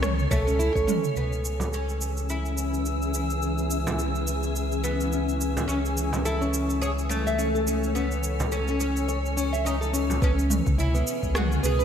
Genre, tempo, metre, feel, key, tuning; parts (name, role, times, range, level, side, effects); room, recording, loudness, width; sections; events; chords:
organic downtempo; 106 BPM; 4/4; swing 57% on 16ths; C# minor; A4 = 440 Hz
granular cloud pad; sustained chords; 0.0-11.8 s; C#4 to G#5; -32 LUFS; left 2 dB; built-in reverb, analog chorus, sidechain pumping
nylon-string guitar; arpeggios; 0.0-1.0, 5.7-11.8 s; B3 to E5; -29 LUFS; left 1 dB; lush chorus, ping-pong delay
warm sub bass; bass; 0.0-11.8 s; C#2; -28 LUFS; equal
organic electronic drum kit; drums; 0.0-11.8 s; cabasa, rim click, toms; -31 LUFS; right 1 dB; overdrive, gated reverb
oud; melody; 0.3-11.8 s; A3 to G#4; -31 LUFS; right 1 dB; ping-pong delay
electronic kick drum; drums; 0.3-0.9, 10.2-11.3 s; -27 LUFS; equal; overdrive
wind-like tuned noise texture; texture; 1.9-10.2 s; E3 to E6; -35 LUFS; right 1 dB; built-in reverb, wide subtle chorus
frame drum; percussion; 1.6-10.2 s; -34 LUFS; right 3 dB
moderate lush hall reverb, RT60 2.6 s; bright 1980s-style digital production; -23 LUFS; side -8 dB against mid
0.0-1.2 A section; 1.2-10.2 B section; 10.2-11.8 C section
filter sweep on ambient pad 1.2-10.2
0.0 A/C#; 1.2 C#m7; 5.7 A/C#; 10.2 C#m7